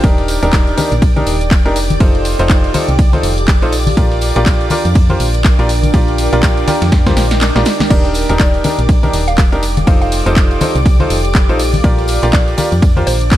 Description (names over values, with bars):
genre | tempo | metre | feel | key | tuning
piano house | 122 BPM | 4/4 | swing 58% on 16ths | Bb major | A4 = 442 Hz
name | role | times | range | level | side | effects
string machine, violins | sustained chords | 0.0-13.4 s | D5 to D6 | -25 LUFS | right 1 dB | ensemble chorus, sidechain pumping
bright grand piano | riff | 0.0-13.1 s | D4 to D5 | -18 LUFS | equal | sidechain pumping, digital delay
solid FM bass | bass | 0.0-13.4 s | Eb1 to F2 | -16 LUFS | equal | sidechain pumping
breakbeat sampler-style drum kit | drums | 0.0-13.4 s | hi-hat, ride cymbal, snare drum | -32 LUFS | right 2 dB | none
electronic kick drum | drums | 0.0-13.4 s | none | -11 LUFS | equal | overdrive
house drum kit | drums | 0.0-13.4 s | crash cymbal, handclaps, hi-hat, ride cymbal, snare drum | -21 LUFS | equal | none
tambourine and congas | percussion | 0.0-13.4 s | none | -22 LUFS | left 3 dB | none
deep dark ambient pad | texture | 0.0-13.4 s | D4 to G5 | -23 LUFS | right 1 dB | chorus, built-in reverb, sidechain pumping
swell | sound effects | 7.3-7.9 s | none | -28 LUFS | right 3 dB | none
mallet-like synth pluck | melody | 7.9-13.2 s | C5 to F5 | -23 LUFS | equal | chorus, phaser, digital delay
room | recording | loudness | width
little or no reverb | dark, warm production | -10 LUFS | side -13 dB against mid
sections
0.0-13.4 A section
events
drum fill 6.9-7.9; swell 7.3-7.9; kick drops out 7.4-7.9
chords
0.0 Ebmaj7; 1.8 F7; 3.7 Bb6; 7.9 Ebmaj7; 9.6 F7; 11.6 Bb6